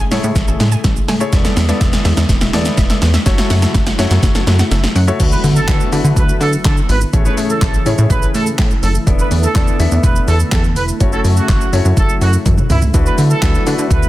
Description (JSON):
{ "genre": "dance-pop", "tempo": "124 BPM", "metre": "4/4", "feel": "straight", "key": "unclear", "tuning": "A4 = 440 Hz", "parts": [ { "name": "warm analog pad", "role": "sustained chords", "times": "0.0-14.1 s", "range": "C#3 to G#4", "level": "-25 LUFS", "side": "right 1 dB", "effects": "chorus, sidechain pumping" }, { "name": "glassy wavetable pluck", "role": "arpeggios", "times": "0.0-5.2 s", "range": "E3 to G#5", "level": "-28 LUFS", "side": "right 2 dB", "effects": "chorus, sidechain pumping, tape echo" }, { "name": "plucky analog bass", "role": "bass", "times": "0.0-14.1 s", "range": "E1 to D3", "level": "-15 LUFS", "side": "equal", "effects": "sidechain pumping" }, { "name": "clear baby grand piano", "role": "accompaniment", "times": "0.1-14.1 s", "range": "A3 to E5", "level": "-22 LUFS", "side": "left 5 dB", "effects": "sidechain pumping" }, { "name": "deep house drum kit", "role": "drums", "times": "0.1-14.1 s", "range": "crash cymbal, handclaps, hi-hat, kick drum, shaker, snare drum, toms", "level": "-15 LUFS", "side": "equal", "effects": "overdrive" }, { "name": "impact", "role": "sound effects", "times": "5.2-7.1 s", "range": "none", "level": "-25 LUFS", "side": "equal", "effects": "none" }, { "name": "warm horn section", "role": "melody", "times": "5.3-14.1 s", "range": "E4 to B4", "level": "-22 LUFS", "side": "right 3 dB", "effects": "sidechain pumping" } ], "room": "little or no reverb", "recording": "dense, heavily limited modern master", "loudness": "-11 LUFS", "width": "side -16 dB against mid", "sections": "0.0-5.2 A section; 5.2-14.1 B section", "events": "build-up 0.0-5.2; drum fill 0.0-5.2, 12.5-12.9; drop 5.2-14.1; impact 5.2-7.1", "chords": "0.0 Amaj7; 1.3 E7sus4; 3.3 F#m7; 5.2 D69; 7.1 Amaj7; 9.1 E7sus4; 11.0 F#m7; 12.9 D69" }